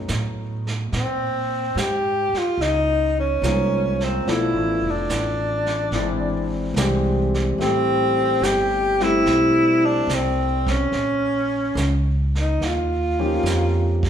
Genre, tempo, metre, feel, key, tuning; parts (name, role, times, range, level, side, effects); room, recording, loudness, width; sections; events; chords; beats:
jazz ballad; 72 BPM; 4/4; swing 69% on 8ths; A4 = 440 Hz
warm concert grand piano; accompaniment; 0.0-14.1 s; E3 to C5; -24 LUFS; left 2 dB
upright bass; bass; 0.0-14.1 s; F1 to Bb2; -24 LUFS; right 1 dB
vintage brush drum kit; drums; 0.1-14.1 s; brushed snare drum, hi-hat, kick drum, snare drum; -30 LUFS; right 3 dB
breathy tenor saxophone; melody; 1.0-14.1 s; C4 to G4; -21 LUFS; equal
wet recital hall reverb, RT60 1.5 s; recorded in a church or concert hall; -19 LUFS; side -9 dB against mid
0.0-14.1 A section
0.0 B9; 0.9 Bbm11; 4.3 Bm7b5; 5.9 E7alt; 7.6 Am7; 10.9 Bbm; 12.6 Eb9
0.08 | 0.92 1.75 2.58 3.42 | 4.25 5.09 5.92 6.75 | 7.59 8.42 9.25 10.09 | 10.92 11.76 12.60 13.44